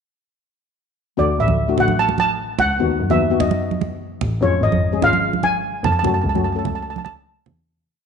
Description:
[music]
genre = calypso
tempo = 148 BPM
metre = 4/4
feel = straight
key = unclear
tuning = A4 = 440 Hz
[part]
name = steel pan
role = melody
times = 1.2-7.1 s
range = C#5 to A5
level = -20 LUFS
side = right 2 dB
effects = none
[part]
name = steel pan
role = accompaniment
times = 1.2-7.0 s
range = G#3 to A4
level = -23 LUFS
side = left 10 dB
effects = none
[part]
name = muted double bass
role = bass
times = 1.2-7.6 s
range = G#1 to F#2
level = -22 LUFS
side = equal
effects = none
[part]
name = congas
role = percussion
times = 1.5-7.6 s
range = none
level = -25 LUFS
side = right 8 dB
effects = none
[sound]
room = wet echo chamber reverb, RT60 1.6 s, small room ambience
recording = 1960s-style stereo with parts hard left and right, nothing above 10.8 kHz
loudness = -16 LUFS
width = side -6 dB against mid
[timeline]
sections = 1.2-7.7 verse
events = fade-out 6.0-7.7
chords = 1.2 D; 2.8 B/D#; 4.4 C#; 6.0 F#m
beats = | 1.18 1.58 1.99 2.39 | 2.80 3.20 3.61 4.01 | 4.42 4.83 5.23 5.64 | 6.04 6.45 6.85 7.26

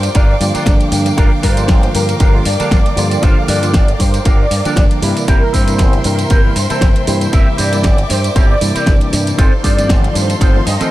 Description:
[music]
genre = nu-disco, nu disco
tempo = 117 BPM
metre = 4/4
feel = swing 55% on 16ths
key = G minor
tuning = A4 = 441 Hz
[part]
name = wide unison lead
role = melody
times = 0.0-10.9 s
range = Bb4 to F5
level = -21 LUFS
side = equal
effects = ensemble chorus, diffuse ambient delay
[part]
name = rich chamber violin section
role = sustained chords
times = 0.0-10.9 s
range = Eb4 to D6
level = -25 LUFS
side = right 1 dB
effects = sidechain pumping
[part]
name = fingered electric bass with an envelope filter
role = bass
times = 0.0-10.8 s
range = G1 to G2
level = -17 LUFS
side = equal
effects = none
[part]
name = pop drum kit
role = drums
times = 0.0-10.9 s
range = hi-hat, snare drum, tambourine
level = -21 LUFS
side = equal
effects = studio reverb
[part]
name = electric guitar with an envelope filter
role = riff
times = 0.1-10.9 s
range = C4 to C5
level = -23 LUFS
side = right 2 dB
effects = wide subtle chorus, diffuse ambient delay
[part]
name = electronic kick drum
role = drums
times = 0.2-10.5 s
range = none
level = -12 LUFS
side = equal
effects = studio reverb
[part]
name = tine electric piano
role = accompaniment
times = 0.4-10.9 s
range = C3 to A5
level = -20 LUFS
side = equal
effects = medium stereo tremolo, diffuse ambient delay
[sound]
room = light reverb, digital ambience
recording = none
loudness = -10 LUFS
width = side -15 dB against mid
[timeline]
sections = 0.0-10.9 A section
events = none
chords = 0.0 Gm7; 5.3 C7/G; 9.4 F7/G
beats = 0.15 0.66 | 1.18 1.69 2.20 2.71 | 3.23 3.74 4.25 4.77 | 5.28 5.79 6.30 6.82 | 7.33 7.84 8.36 8.87 | 9.38 9.89 10.41

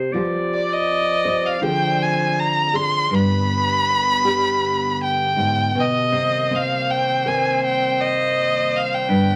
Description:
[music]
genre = acoustic folk-pop ballad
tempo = 81 BPM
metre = 4/4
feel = straight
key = C minor from 6.1 s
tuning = A4 = 440 Hz
[part]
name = bright clarinet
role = second line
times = 0.0-9.4 s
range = B4 to D5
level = -28 LUFS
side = equal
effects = none
[part]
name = nylon-string guitar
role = accompaniment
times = 0.0-9.4 s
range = G2 to C5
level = -25 LUFS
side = equal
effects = none
[part]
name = hollow soft pad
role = sustained chords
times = 0.1-9.4 s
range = D3 to D5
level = -34 LUFS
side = equal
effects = chorus
[part]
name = rich violin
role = melody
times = 0.5-9.4 s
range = D5 to C6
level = -22 LUFS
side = equal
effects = none
[sound]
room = moderate large studio reverb, RT60 0.8 s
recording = vinyl crackle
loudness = -20 LUFS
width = mono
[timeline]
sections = 0.0-6.1 A section; 6.1-9.4 B section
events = none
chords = 0.1 Fsus2; 1.6 Dm7b5; 3.1 G; 6.1 Cm7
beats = | 0.13 0.88 1.62 2.36 | 3.11 3.86 4.61 5.37 | 6.13 6.88 7.62 8.36 | 9.10

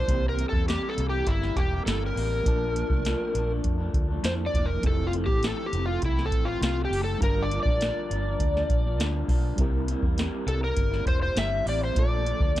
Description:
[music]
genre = indie pop, bedroom pop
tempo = 101 BPM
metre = 4/4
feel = straight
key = unclear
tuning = A4 = 439 Hz
[part]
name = overdriven slide guitar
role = melody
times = 0.0-12.6 s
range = E4 to E5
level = -29 LUFS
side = left 1 dB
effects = analog chorus, tape echo
[part]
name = electric guitar through a small old amp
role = accompaniment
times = 0.0-12.6 s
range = F2 to E4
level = -34 LUFS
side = left 2 dB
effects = wide subtle chorus, vibrato effect
[part]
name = mellow reed electric piano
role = accompaniment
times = 0.0-12.6 s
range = E3 to A5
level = -37 LUFS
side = right 4 dB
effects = fast tremolo
[part]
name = vintage muted fingered electric bass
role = bass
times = 0.0-12.6 s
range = E1 to F2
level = -28 LUFS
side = equal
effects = none
[part]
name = soft vintage rhythm box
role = drums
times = 0.1-12.6 s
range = hi-hat, kick drum, snare drum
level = -27 LUFS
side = equal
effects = none
[sound]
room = little or no reverb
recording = dark, warm production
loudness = -23 LUFS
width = side -14 dB against mid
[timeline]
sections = 0.0-12.6 A section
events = electric slide guitar solo 0.0-12.6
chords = 0.1 C7; 2.5 Bbmaj7; 4.8 Fmaj7; 7.2 Gm7; 9.6 C7; 12.0 Bbmaj7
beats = | 0.09 0.68 1.27 1.87 | 2.46 3.06 3.65 4.24 | 4.84 5.43 6.03 6.62 | 7.21 7.81 8.40 8.99 | 9.59 10.18 10.78 11.37 | 11.96 12.56

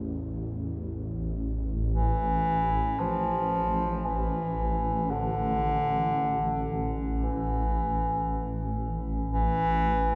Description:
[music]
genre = dark ambient drone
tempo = free time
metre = none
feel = none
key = unclear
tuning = A4 = 440 Hz
[part]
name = swarming drone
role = drone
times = 0.0-10.2 s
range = A1 to E2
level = -32 LUFS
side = equal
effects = built-in reverb
[part]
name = warm bass clarinet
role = melody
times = 1.9-10.2 s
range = D3 to F3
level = -30 LUFS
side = equal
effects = diffuse ambient delay
[sound]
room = wet cathedral reverb, RT60 6.5 s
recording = none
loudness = -29 LUFS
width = mono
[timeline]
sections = 0.9-10.2 A section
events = none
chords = 0.0 A5; 0.9 N.C.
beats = free time

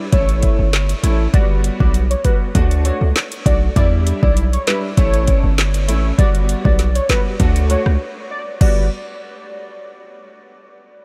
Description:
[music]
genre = dancehall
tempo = 99 BPM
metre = 4/4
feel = straight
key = G lydian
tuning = A4 = 439 Hz
[part]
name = clear grand piano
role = accompaniment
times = 0.0-8.8 s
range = G3 to F#4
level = -27 LUFS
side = equal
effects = ensemble chorus
[part]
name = warm velvety synth lead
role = melody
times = 0.1-8.9 s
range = B4 to D5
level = -27 LUFS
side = equal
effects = chorus, diffuse ambient delay
[part]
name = hard-hitting 808-style bass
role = bass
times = 0.1-8.9 s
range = G1 to E2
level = -19 LUFS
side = equal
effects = none
[part]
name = afro-pop drum kit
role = drums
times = 0.1-8.8 s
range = crash cymbal, handclaps, hi-hat, kick drum, rim click, snare drum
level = -20 LUFS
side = equal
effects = overdrive
[sound]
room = light reverb, digital ambience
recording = none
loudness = -16 LUFS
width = mono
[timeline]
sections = 0.0-8.6 A section; 8.6-11.0 B section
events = break 8.0-8.6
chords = 0.1 A; 1.3 Gmaj7; 2.5 D; 3.8 Em7; 5.0 A; 6.2 Gmaj7; 7.4 D; 8.6 Gmaj7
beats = 0.13 0.73 | 1.34 1.94 2.55 3.16 | 3.76 4.37 4.97 5.58 | 6.19 6.79 7.40 8.00 | 8.61

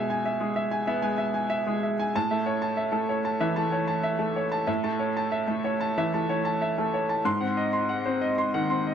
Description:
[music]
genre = neoclassical minimalist piano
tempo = 94 BPM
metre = 4/4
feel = rubato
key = unclear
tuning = A4 = 439 Hz
[part]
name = bright upright piano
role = solo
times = 0.0-8.9 s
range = G#2 to B#5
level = -24 LUFS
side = equal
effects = none
[sound]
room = moderate studio reverb, RT60 0.6 s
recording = none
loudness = -24 LUFS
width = side -8 dB against mid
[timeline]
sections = 0.0-8.9 A section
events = none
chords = 0.0 E/B; 2.2 A; 7.3 G#7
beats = 0.25 0.88 1.51 | 2.15 2.77 3.40 4.03 | 4.68 5.32 5.97 6.62 | 7.25 7.90 8.54

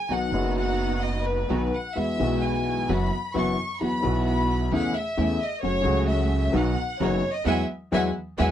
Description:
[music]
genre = tango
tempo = 130 BPM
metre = 4/4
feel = rubato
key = E major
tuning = A4 = 436 Hz
[part]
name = rich chamber violin section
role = second line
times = 0.0-8.5 s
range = B4 to C#6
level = -28 LUFS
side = left 1 dB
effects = none
[part]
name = warm upright piano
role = accompaniment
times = 0.1-8.5 s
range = F#1 to F#4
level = -26 LUFS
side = left 4 dB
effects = none
[part]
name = dark studio string section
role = stabs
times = 0.1-8.5 s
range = G#3 to F#4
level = -31 LUFS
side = right 5 dB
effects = none
[part]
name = upright bass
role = bass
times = 0.1-8.5 s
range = F#1 to E2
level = -28 LUFS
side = right 2 dB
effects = none
[sound]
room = light reverb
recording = dry, close 1970s-style studio recording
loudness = -22 LUFS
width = side -10 dB against mid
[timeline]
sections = 0.0-8.5 A section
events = violin section solo 0.0-8.5; band accent 7.5-8.5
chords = 0.1 B; 2.0 Eadd9; 2.9 Bsus4/F#; 3.8 Esus2; 4.7 A/E; 5.6 F#m; 6.5 B; 7.5 Eadd9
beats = | 0.10 0.56 1.02 1.49 | 1.96 2.43 2.89 3.35 | 3.81 4.26 4.72 5.17 | 5.63 6.09 6.55 7.00 | 7.47 7.93 8.39

